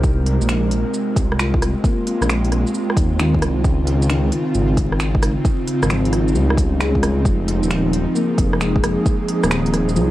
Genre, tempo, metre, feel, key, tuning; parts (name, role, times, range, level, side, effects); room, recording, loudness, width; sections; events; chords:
future garage; 133 BPM; 4/4; swing 67% on 16ths; A4 = 439 Hz
felt-muted upright piano; accompaniment; 0.0-10.1 s; Eb3 to G4; -25 LUFS; left 3 dB; sidechain pumping, tape echo
airy breathy pad; sustained chords; 0.0-10.1 s; Db3 to Bb4; -22 LUFS; right 1 dB; chorus, sidechain pumping
dark detuned saw bass; bass; 0.0-10.1 s; Eb1 to Eb2; -19 LUFS; equal; sidechain pumping
electronic kick drum; drums; 0.0-9.2 s; -19 LUFS; equal; overdrive
organic electronic drum kit; drums; 0.0-10.1 s; finger snaps, hi-hat, rim click, shaker; -25 LUFS; right 1 dB
light reverb; vinyl crackle; -16 LUFS; side -15 dB against mid
0.0-10.1 A section
0.0 Ab69; 3.6 Dbmaj9; 7.3 Fm7